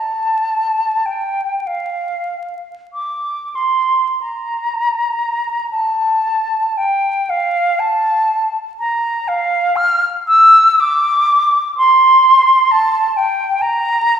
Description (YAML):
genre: classical, free, expressive piece for unaccompanied flute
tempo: 22-44 BPM (dotted quarters)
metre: 6/8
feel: rubato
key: Bb major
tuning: A4 = 440 Hz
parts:
  - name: concert flute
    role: solo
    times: 0.0-14.2 s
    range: F5 to F6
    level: -13 LUFS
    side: equal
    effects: none
room: wet recital hall reverb, RT60 1.8 s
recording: recorded in a church or concert hall, vinyl crackle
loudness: -12 LUFS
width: side -8 dB against mid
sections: 0.0-5.7 A section; 5.7-14.2 B section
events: none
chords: none